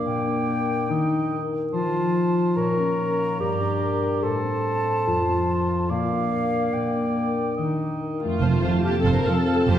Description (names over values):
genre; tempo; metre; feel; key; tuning
cinematic; 144 BPM; 4/4; straight; F major; A4 = 441 Hz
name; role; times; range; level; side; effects
clear clarinet; second line; 0.0-9.8 s; A3 to Bb4; -26 LUFS; right 1 dB; none
mellow silver concert flute; second line; 0.0-9.8 s; F5 to Bb5; -30 LUFS; left 1 dB; none
warm cor anglais; second line; 0.0-9.8 s; C5 to F5; -31 LUFS; right 2 dB; none
concert harp; arpeggios; 0.0-9.8 s; F2 to A5; -26 LUFS; left 3 dB; none
warm symphonic viola section; accompaniment; 8.2-9.8 s; F4 to Bb4; -26 LUFS; right 2 dB; none
warm symphonic violin section; melody; 8.4-9.8 s; A5; -33 LUFS; right 1 dB; none
clear symphonic violin section; second line; 8.4-9.8 s; C5; -36 LUFS; left 1 dB; none
clear trombone section; sustained chords; 8.4-9.8 s; C3 to F3; -31 LUFS; right 2 dB; none
mellow French horn section; sustained chords; 8.4-9.8 s; C4 to A4; -31 LUFS; left 4 dB; none
dark symphonic double bass section; bass; 8.4-9.8 s; F1; -24 LUFS; right 3 dB; none
warm symphonic cello section; bass; 8.4-9.8 s; F2; -25 LUFS; right 4 dB; none
room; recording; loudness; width
wet recital hall reverb, RT60 1.5 s; heard from further back in the room; -21 LUFS; side -10 dB against mid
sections
0.0-8.4 A section; 8.4-9.8 B section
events
build-up 0.0-8.4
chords
0.1 Gm/Bb; 0.9 Eb; 1.7 F; 2.6 Bbm; 3.4 Gm; 4.2 Am; 5.1 F; 5.9 Bb; 6.7 Gm/Bb; 7.6 Eb; 8.4 F